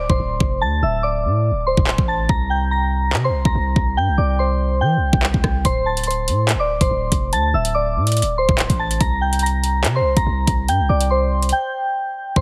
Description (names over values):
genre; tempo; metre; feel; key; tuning
hip hop, drill; 143 BPM; 4/4; half-time; unclear; A4 = 441 Hz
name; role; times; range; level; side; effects
soft synth bell; melody; 0.0-12.4 s; C5 to Bb6; -23 LUFS; equal; chorus, low-pass filter
hard-hitting 808-style bass; bass; 0.0-12.4 s; D1 to E3; -22 LUFS; equal; none
drill drum kit; drums; 0.1-12.4 s; handclaps, hi-hat, kick drum, rim click; -22 LUFS; equal; none
room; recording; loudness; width
digital ambience; heavily compressed radio sound, multiband compression; -19 LUFS; mono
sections
0.0-12.4 A section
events
break 0.0-5.6, 11.5-12.4; hi-hats muted 4.0-5.6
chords
0.0 D7(no3); 2.3 C7(no3); 5.6 D7(no3); 9.0 C5